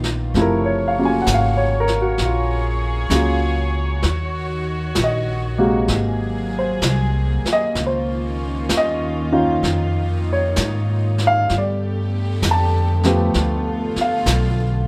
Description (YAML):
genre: jazz ballad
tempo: 65 BPM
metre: 4/4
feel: swing 67% on 8ths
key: unclear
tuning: A4 = 442 Hz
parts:
  - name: warm baby grand piano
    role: accompaniment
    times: 0.0-14.9 s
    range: C3 to A5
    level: -23 LUFS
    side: equal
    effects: none
  - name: dark studio string section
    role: sustained chords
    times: 0.0-14.9 s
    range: D3 to Db5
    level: -29 LUFS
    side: equal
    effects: none
  - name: upright bass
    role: bass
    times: 0.0-14.9 s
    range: Gb1 to Ab2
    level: -23 LUFS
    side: equal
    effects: none
  - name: jazz brush drum kit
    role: drums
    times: 0.0-14.9 s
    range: brushed snare drum, hi-hat, snare drum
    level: -28 LUFS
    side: equal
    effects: none
room: light reverb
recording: none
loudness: -19 LUFS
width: mono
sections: 0.0-14.9 A section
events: none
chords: 0.4 Gbmaj7; 4.0 Ebm7; 5.9 Ab9; 7.8 Dbadd9; 11.5 G9